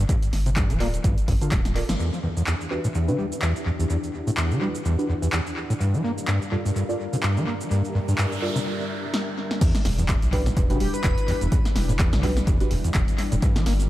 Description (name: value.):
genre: acid house.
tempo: 126 BPM.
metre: 4/4.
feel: swing 56% on 16ths.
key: E minor.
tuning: A4 = 441 Hz.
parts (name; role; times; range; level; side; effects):
overdriven acid bass; riff; 0.0-13.7 s; E2 to Bb3; -25 LUFS; equal; distortion, tube saturation, analog chorus, cassette tape, sidechain pumping, tape echo.
saturated sub bass; bass; 0.0-2.0, 9.9-13.9 s; D1 to B1; -26 LUFS; equal; tube saturation, sidechain pumping.
electronic kick drum; drums; 0.1-1.6, 9.6-13.5 s; none; -23 LUFS; equal; none.
punchy analog drum machine; drums; 0.1-13.9 s; crash cymbal, handclaps, hi-hat, shaker, snare drum; -30 LUFS; equal; tape echo.
deep mellow chord stab; stabs; 0.8-12.7 s; D4 to F5; -32 LUFS; right 1 dB; analog chorus, tape echo.
string machine, full ensemble; sustained chords; 2.0-13.9 s; E3 to F#5; -32 LUFS; left 1 dB; ensemble chorus, sidechain pumping.
noise sweep; sound effects; 7.9-9.6 s; none; -36 LUFS; right 4 dB; none.
airy dreamy lead; melody; 10.8-11.4 s; G4 to B4; -33 LUFS; left 1 dB; chorus, tape echo.
room: light reverb.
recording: echo-heavy mix.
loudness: -21 LUFS.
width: side -15 dB against mid.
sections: 0.0-2.0 A section; 2.0-9.6 B section; 9.6-13.9 C section.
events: drum fill 1.5-2.0, 9.1-9.6; band accent 1.9; filter sweep on string machine 2.0-9.6; noise sweep 7.9-9.6; break 8.7-9.6; drop 9.6-13.9.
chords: 0.0 Gm7; 2.0 Em7; 5.8 Gm7; 9.6 Em7.